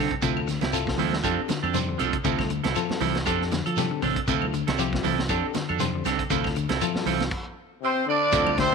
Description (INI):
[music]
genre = afrobeat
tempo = 118 BPM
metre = 4/4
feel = swing 55% on 16ths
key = D minor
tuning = A4 = 440 Hz
[part]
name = clean electric guitar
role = arpeggios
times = 0.0-8.7 s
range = C3 to F3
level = -31 LUFS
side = left 12 dB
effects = none
[part]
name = electric guitar at the edge of break-up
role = stabs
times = 0.0-8.7 s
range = F3 to A4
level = -28 LUFS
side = right 13 dB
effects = none
[part]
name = fingered electric bass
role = bass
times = 0.0-8.7 s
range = A1 to F3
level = -30 LUFS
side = equal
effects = none
[part]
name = vintage drum kit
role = drums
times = 0.1-8.7 s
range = crash cymbal, hi-hat, kick drum, snare drum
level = -31 LUFS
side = equal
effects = none
[part]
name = overdriven reed electric piano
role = accompaniment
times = 0.2-8.6 s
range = C4 to C5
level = -33 LUFS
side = left 14 dB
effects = tremolo
[part]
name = shekere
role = percussion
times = 0.2-8.7 s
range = none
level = -34 LUFS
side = right 10 dB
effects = none
[part]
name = claves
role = percussion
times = 0.4-8.6 s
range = none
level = -38 LUFS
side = left 14 dB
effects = none
[part]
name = congas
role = percussion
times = 0.6-8.6 s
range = none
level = -34 LUFS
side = right 12 dB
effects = none
[part]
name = warm horn section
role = melody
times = 7.8-8.7 s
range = C4 to D5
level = -22 LUFS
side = equal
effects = tape echo
[part]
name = clear trombone section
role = second line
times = 7.8-8.7 s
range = C3 to D3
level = -29 LUFS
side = left 12 dB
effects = tape echo
[part]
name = growling tenor saxophone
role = second line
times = 7.8-8.7 s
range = C4 to D4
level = -28 LUFS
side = right 13 dB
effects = none
[sound]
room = light reverb, small room ambience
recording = 1960s-style stereo with parts hard left and right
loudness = -23 LUFS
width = side -5 dB against mid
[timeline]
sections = 0.0-8.3 A section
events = none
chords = 0.2 Dm9; 1.2 F6; 2.3 Dm9; 3.3 F6; 4.3 Dm9; 5.3 F6; 6.3 Dm9; 7.3 N.C.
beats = | 0.22 0.73 1.24 1.75 | 2.25 2.76 3.27 3.77 | 4.28 4.79 5.29 5.80 | 6.31 6.81 7.32 7.83 | 8.33